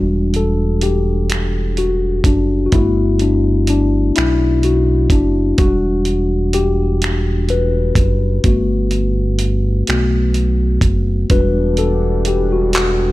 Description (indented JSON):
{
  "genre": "slow six-eight R&B",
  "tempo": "42 BPM (dotted quarters)",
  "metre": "6/8",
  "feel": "straight",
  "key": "E minor",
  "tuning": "A4 = 440 Hz",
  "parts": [
    { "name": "tine electric piano", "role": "accompaniment", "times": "0.0-13.1 s", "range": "G3 to B4", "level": "-17 LUFS", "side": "left 3 dB", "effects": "none" },
    { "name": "round analog bass", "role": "bass", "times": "0.0-13.1 s", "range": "E1 to B1", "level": "-17 LUFS", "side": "right 1 dB", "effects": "none" },
    { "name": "dusty soul sampler-style drum kit", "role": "drums", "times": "0.3-13.0 s", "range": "finger snaps, handclaps, hi-hat, kick drum", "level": "-18 LUFS", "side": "right 1 dB", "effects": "none" },
    { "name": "chorused pulse-width pad", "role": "sustained chords", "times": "11.3-13.1 s", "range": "E3 to F#5", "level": "-29 LUFS", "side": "right 2 dB", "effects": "lush chorus" }
  ],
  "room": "little or no reverb",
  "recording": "none",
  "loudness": "-13 LUFS",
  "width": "side -17 dB against mid",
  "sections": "0.0-13.1 A section",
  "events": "tine electric piano solo 0.0-13.1",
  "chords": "0.0 Em9; 2.7 Gmaj7; 5.6 Em9; 8.4 Gmaj7; 11.3 Em9"
}